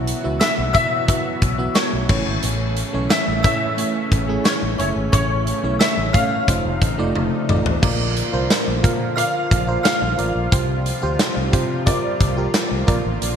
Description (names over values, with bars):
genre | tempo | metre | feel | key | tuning
1980s-style pop | 89 BPM | 4/4 | straight | A major, Bb major from 7.8 s | A4 = 440 Hz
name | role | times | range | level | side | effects
FM electric piano | accompaniment | 0.0-13.4 s | A2 to F5 | -24 LUFS | right 2 dB | chorus
lush unison pad | sustained chords | 0.0-13.4 s | C3 to F#4 | -29 LUFS | left 1 dB | chorus
fretless electric bass | bass | 0.0-13.4 s | F1 to C3 | -24 LUFS | left 1 dB | none
big rock drum kit | drums | 0.1-13.4 s | crash cymbal, hi-hat, kick drum, snare drum, tambourine, toms | -20 LUFS | equal | gated reverb
clear baby grand piano | melody | 0.4-12.8 s | C#5 to F5 | -24 LUFS | left 2 dB | ensemble chorus
synth chime | second line | 0.4-12.8 s | C#6 to F6 | -30 LUFS | left 1 dB | ensemble chorus, phaser, tremolo, ping-pong delay
room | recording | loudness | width
moderate lush hall reverb, RT60 2.7 s | bright 1980s-style digital production | -17 LUFS | side -8 dB against mid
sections
0.0-7.8 A section; 7.8-13.4 A section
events
drum fill 7.2-7.8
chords
0.0 Esus2/B; 2.1 A; 6.5 F7; 7.8 Bb; 10.5 Fsus2/C